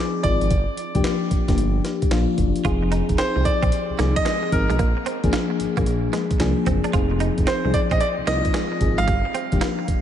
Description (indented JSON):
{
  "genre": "R&B, new jack swing",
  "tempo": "112 BPM",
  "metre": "4/4",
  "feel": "swing 66% on 16ths",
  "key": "F dorian",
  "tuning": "A4 = 440 Hz",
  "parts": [
    { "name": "bright concert grand piano", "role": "melody", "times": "0.0-10.0 s", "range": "Bb4 to F5", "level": "-26 LUFS", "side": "equal", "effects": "diffuse ambient delay" },
    { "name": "mellow FM electric piano", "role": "accompaniment", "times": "0.0-10.0 s", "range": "F3 to Ab4", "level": "-24 LUFS", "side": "left 4 dB", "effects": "chorus" },
    { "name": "smooth synth bass", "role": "bass", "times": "0.2-10.0 s", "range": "F1 to C2", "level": "-24 LUFS", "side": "right 1 dB", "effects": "none" },
    { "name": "breakbeat sampler-style drum kit", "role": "drums", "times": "0.2-10.0 s", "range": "handclaps, hi-hat, kick drum, snare drum", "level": "-24 LUFS", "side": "right 1 dB", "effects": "none" },
    { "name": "direct-recorded clean electric guitar", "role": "riff", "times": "2.6-9.8 s", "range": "G3 to F4", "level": "-29 LUFS", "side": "right 6 dB", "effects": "ensemble chorus" }
  ],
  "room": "moderate plate reverb, RT60 3.0 s",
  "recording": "dreamy mix soaked in reverb, nothing above 10.7 kHz",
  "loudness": "-19 LUFS",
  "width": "side -10 dB against mid",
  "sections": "0.0-10.0 A section",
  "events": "none",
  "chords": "0.0 Fm7; 0.5 Gm7; 2.6 Fm7; 4.8 Bb7; 6.9 Fm7; 9.1 Gm7"
}